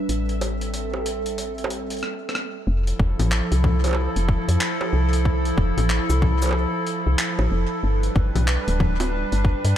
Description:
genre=IDM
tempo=93 BPM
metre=4/4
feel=swing 62% on 16ths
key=F lydian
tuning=A4 = 441 Hz
part: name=warbly tape-like pad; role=sustained chords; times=0.0-9.8 s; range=F3 to B4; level=-26 LUFS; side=right 1 dB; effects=chorus, built-in reverb, vintage 12-bit sampler grit
part: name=woody FM bass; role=bass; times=0.0-9.7 s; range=D1 to G2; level=-22 LUFS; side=equal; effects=none
part: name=bubbling stepped-filter texture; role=texture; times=0.0-2.0 s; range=E5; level=-42 LUFS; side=right 2 dB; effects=chorus, built-in reverb
part: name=jungle sampler-style drum kit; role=drums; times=0.1-9.7 s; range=bongos, cabasa, congas, handclaps, hi-hat, rim click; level=-27 LUFS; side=left 1 dB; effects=overdrive
part: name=electronic kick drum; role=drums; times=3.0-9.6 s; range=none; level=-23 LUFS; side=equal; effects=none
room=little or no reverb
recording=dark, warm production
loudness=-20 LUFS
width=side -11 dB against mid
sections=0.0-2.7 A section; 2.7-9.8 B section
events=filter sweep on ambient pad 0.0-2.7; drum fill 2.0-2.7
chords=0.1 Am7; 2.7 Fmaj7; 7.8 G

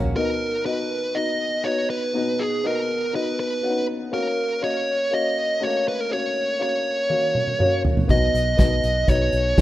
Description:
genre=piano-driven pop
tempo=121 BPM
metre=4/4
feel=straight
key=unclear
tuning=A4 = 440 Hz
part: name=warm upright piano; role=accompaniment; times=0.0-9.6 s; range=B2 to F#5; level=-26 LUFS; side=left 3 dB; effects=none
part: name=vintage muted fingered electric bass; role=bass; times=0.0-0.1, 8.1-9.6 s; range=A#1 to B1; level=-24 LUFS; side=equal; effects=none
part: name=unplugged drum kit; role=drums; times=0.0-0.2, 7.1-9.6 s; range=hi-hat, kick drum, snare drum, toms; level=-21 LUFS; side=equal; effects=none
part: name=fuzz lead guitar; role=melody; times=0.2-9.6 s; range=G#4 to D#5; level=-23 LUFS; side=right 1 dB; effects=distortion
room=light reverb, studio reverb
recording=rough home demo mix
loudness=-20 LUFS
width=side -14 dB against mid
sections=0.2-9.6 A section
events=drum fill 7.1-8.1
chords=0.2 B; 4.1 F#; 8.1 B

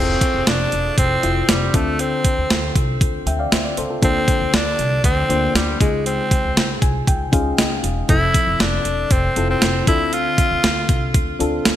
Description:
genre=1980s-style pop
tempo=118 BPM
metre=4/4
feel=straight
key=unclear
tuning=A4 = 439 Hz
part: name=raspy tenor saxophone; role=melody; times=0.0-11.2 s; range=G3 to F4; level=-21 LUFS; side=equal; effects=digital delay
part: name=mellow FM electric piano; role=accompaniment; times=0.0-11.8 s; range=Db3 to Ab5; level=-24 LUFS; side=left 3 dB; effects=chorus
part: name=upright bass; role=bass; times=0.0-11.8 s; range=E1 to D2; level=-24 LUFS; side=equal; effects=none
part: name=clean 12-bit digital drum machine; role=drums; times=0.2-11.8 s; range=hi-hat, kick drum, snare drum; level=-18 LUFS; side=equal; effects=gated reverb
room=light reverb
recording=bright 1980s-style digital production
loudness=-16 LUFS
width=side -12 dB against mid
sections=0.0-11.8 A section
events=FM electric piano fill 6.6-8.1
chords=0.0 Fmaj7; 1.7 Dm7; 4.0 Bbmaj7; 5.8 Dbadd9; 8.1 Fmaj7; 9.9 Dm7

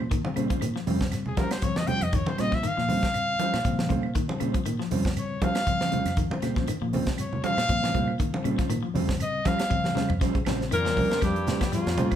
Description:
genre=afrobeat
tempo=119 BPM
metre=4/4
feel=swing 54% on 16ths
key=Bb dorian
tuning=A4 = 440 Hz
part: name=clear trumpet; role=melody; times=0.0-10.1 s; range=Ab4 to G5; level=-28 LUFS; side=left 1 dB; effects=none
part: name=mellow electric guitar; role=stabs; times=0.0-12.1 s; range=G3 to C5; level=-32 LUFS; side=right 5 dB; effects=none
part: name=fingered electric bass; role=bass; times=0.0-12.2 s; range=Bb1 to G3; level=-31 LUFS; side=equal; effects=none
part: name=claves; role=percussion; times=0.0-12.2 s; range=none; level=-46 LUFS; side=right 8 dB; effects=none
part: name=electric guitar at the edge of break-up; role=arpeggios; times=0.1-12.1 s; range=Db3 to G3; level=-34 LUFS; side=left 8 dB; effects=none
part: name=tight funk drum kit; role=drums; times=0.1-12.2 s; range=hi-hat, kick drum, snare drum, toms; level=-30 LUFS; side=equal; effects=none
part: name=shekere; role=percussion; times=0.1-12.2 s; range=none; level=-36 LUFS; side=right 2 dB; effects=none
part: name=congas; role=percussion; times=0.2-12.1 s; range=none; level=-32 LUFS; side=right 2 dB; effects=none
part: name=reed electric piano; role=accompaniment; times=0.3-11.1 s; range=Db3 to C4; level=-34 LUFS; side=left 4 dB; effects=fast tremolo
part: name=breathy alto saxophone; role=melody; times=10.7-12.2 s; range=F4 to Bb4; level=-28 LUFS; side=left 3 dB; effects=none
part: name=bright trombone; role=second line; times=10.7-12.2 s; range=F2 to Bb2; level=-34 LUFS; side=right 3 dB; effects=none
part: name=raspy baritone saxophone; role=second line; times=10.7-12.2 s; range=F2 to Bb2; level=-36 LUFS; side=right 4 dB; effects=none
room=moderate large studio reverb, RT60 1.1 s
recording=band playing live in one room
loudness=-24 LUFS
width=side -10 dB against mid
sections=0.0-10.2 A section; 10.2-12.2 B section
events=trumpet solo 0.0-10.2; drum fill 9.7-10.2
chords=0.0 Bbm69

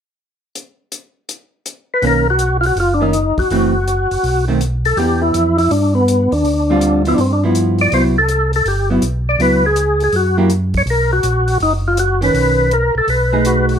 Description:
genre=soul jazz organ trio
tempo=163 BPM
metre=4/4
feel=swing 66% on 8ths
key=unclear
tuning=A4 = 442 Hz
part: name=warm soul drum kit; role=drums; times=0.6-13.7 s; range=hi-hat, kick drum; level=-28 LUFS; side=left 2 dB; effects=none
part: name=percussive tonewheel organ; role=melody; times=1.9-13.8 s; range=B3 to D5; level=-15 LUFS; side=left 1 dB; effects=slow rotary speaker, overdrive, chorus vibrato, plate reverb
part: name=vintage hollow-body jazz guitar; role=accompaniment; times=2.0-13.8 s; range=D3 to G#4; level=-17 LUFS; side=right 2 dB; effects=none
part: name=mellow tonewheel organ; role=bass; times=2.0-13.8 s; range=F#1 to G2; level=-18 LUFS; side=equal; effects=overdrive, chorus vibrato, slow rotary speaker
room=moderate studio reverb, RT60 0.5 s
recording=none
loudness=-13 LUFS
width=side -8 dB against mid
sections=0.6-2.0 A section; 2.0-13.8 B section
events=none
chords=0.6 N.C.; 2.0 Bmaj9; 3.5 F#m7b5; 4.2 B7b9; 5.0 Em7; 6.5 Dm11; 7.2 G6; 7.9 Cmaj7#11; 9.4 C#m7; 10.1 F#7b9; 10.9 Bmaj9; 13.1 B6

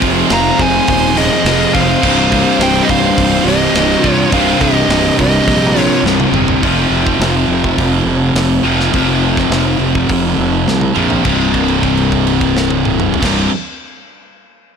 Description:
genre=heavy metal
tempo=104 BPM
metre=4/4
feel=straight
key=C minor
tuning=A4 = 440 Hz
part: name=warm chamber string section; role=sustained chords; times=0.0-6.6 s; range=Eb3 to C5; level=-27 LUFS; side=right 2 dB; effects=none
part: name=distorted electric guitar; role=riff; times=0.0-6.6 s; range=C2 to F4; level=-21 LUFS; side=right 2 dB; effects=none
part: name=high-gain distorted guitar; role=riff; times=0.0-13.5 s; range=C2 to F3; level=-17 LUFS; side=right 17 dB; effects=distortion
part: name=sludgy distorted guitar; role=riff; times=0.0-13.5 s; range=C2 to F3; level=-16 LUFS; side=left 9 dB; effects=overdrive
part: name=fuzz fingered electric bass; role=bass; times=0.0-13.5 s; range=C1 to C2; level=-18 LUFS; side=right 1 dB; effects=overdrive
part: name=tight metal drum kit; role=drums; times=0.0-13.4 s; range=crash cymbal, hi-hat, kick drum, snare drum, toms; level=-20 LUFS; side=right 1 dB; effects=soft clipping on kick, soft clipping on snare
part: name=nasal lead guitar with a parked wah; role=melody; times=0.3-6.0 s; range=Eb5 to Bb5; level=-17 LUFS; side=right 1 dB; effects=overdrive, tape echo
part: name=high-gain lead guitar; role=second line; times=0.3-6.0 s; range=G4 to F5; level=-21 LUFS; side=right 4 dB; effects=distortion, tape echo
room=small room ambience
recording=blown-out, overdriven recording, overdrive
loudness=-10 LUFS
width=side -6 dB against mid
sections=0.0-6.6 A section; 6.6-11.2 B section; 11.2-13.6 C section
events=drum fill 6.0-6.6, 10.7-11.2; held note 11.2-13.2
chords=0.0 Fm; 2.0 Cm; 6.6 F5; 11.2 C5

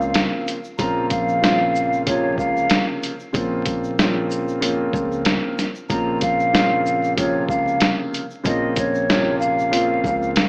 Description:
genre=hip hop, boom-bap hip-hop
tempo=94 BPM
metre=4/4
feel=swing 55% on 16ths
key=Bb minor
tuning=A4 = 440 Hz
part: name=mellow hollow silver concert flute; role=melody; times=0.0-10.5 s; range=Db5 to Bb5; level=-24 LUFS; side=equal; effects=high-pass filter, low-pass filter, tape echo
part: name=dark baby grand piano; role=accompaniment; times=0.0-10.5 s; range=C3 to F4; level=-25 LUFS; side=equal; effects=high-pass filter, low-pass filter
part: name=upright bass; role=bass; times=0.0-10.5 s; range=Bb1 to Db2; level=-34 LUFS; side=equal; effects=none
part: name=egg shaker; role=percussion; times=0.0-10.5 s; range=none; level=-50 LUFS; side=equal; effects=none
part: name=boom bap sampler-style drum kit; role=drums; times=0.1-10.5 s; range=hi-hat, kick drum, shaker, snare drum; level=-23 LUFS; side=equal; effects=none
room=moderate plate reverb, RT60 1.4 s, small room ambience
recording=dreamy mix soaked in reverb, vinyl crackle, AM radio sound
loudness=-20 LUFS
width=mono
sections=0.0-10.5 A section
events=none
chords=0.0 Bbmadd9

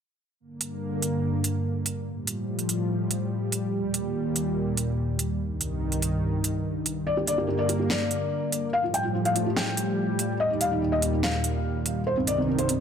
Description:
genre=heavy wobble dubstep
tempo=144 BPM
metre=4/4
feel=half-time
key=G minor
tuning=A4 = 441 Hz
part: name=lush unison pad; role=sustained chords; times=0.4-12.8 s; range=C2 to Bb3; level=-27 LUFS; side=equal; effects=chorus
part: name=big-room dance drum kit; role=drums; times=0.6-12.8 s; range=hi-hat, snare drum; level=-29 LUFS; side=right 2 dB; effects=small room ambience
part: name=felt-muted upright piano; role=melody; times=7.1-12.8 s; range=C4 to G5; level=-26 LUFS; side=left 1 dB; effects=ping-pong delay
room=light reverb, digital ambience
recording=none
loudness=-24 LUFS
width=side -7 dB against mid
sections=0.4-12.8 A section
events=filter sweep on analog synth pad 0.4-12.8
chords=0.4 Gm; 2.1 Fadd9; 3.7 Eb; 5.4 Cm; 7.1 Gm; 8.7 Fadd9; 10.4 Eb; 12.1 Cm

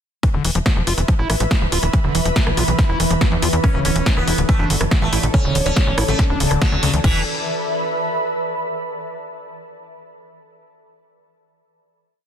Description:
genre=psychedelic trance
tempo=141 BPM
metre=4/4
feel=straight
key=unclear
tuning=A4 = 437 Hz
part: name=swarming drone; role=sustained chords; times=1.5-7.1 s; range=E3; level=-28 LUFS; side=right 3 dB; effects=built-in reverb, sidechain pumping
part: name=overdriven acid bass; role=riff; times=0.2-7.2 s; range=C#3 to F4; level=-24 LUFS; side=moving between left 7 dB and right 8 dB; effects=auto-pan, sidechain pumping, digital delay
part: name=electronic kick drum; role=drums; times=0.2-7.1 s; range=none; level=-17 LUFS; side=equal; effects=overdrive, studio reverb
part: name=techno drum kit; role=drums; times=0.2-7.1 s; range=crash cymbal, hi-hat, rim click, snare drum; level=-24 LUFS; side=equal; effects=overdrive, studio reverb
part: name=ethereal airy pad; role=texture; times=0.9-8.7 s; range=A4 to B5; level=-25 LUFS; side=equal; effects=ensemble chorus, built-in reverb, sidechain pumping
part: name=tight sequencer bass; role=bass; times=0.3-7.2 s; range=D1 to E2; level=-21 LUFS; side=equal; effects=none
part: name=sitar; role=melody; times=3.6-7.2 s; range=E3 to C#4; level=-25 LUFS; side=equal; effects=phaser, sidechain pumping, digital delay
room=light reverb, digital ambience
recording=dense, heavily limited modern master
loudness=-16 LUFS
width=side -8 dB against mid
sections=0.2-7.0 drop; 7.0-8.7 final chord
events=drop 0.2-7.0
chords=0.2 E5; 3.6 D5; 7.0 E5

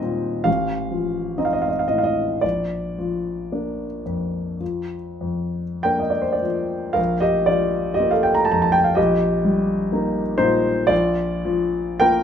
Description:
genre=classical, romantic nocturne for solo piano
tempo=45-69 BPM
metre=4/4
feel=rubato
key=Bb major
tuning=A4 = 439 Hz
part: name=warm concert grand piano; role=solo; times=0.0-12.2 s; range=A1 to Bb5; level=-19 LUFS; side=equal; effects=none
room=light reverb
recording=none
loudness=-19 LUFS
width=side -8 dB against mid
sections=0.0-7.0 A section; 7.0-12.2 A section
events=none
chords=0.5 F7/A; 2.4 Bb; 7.0 Bb5; 9.0 Eb/Bb; 10.9 Bb

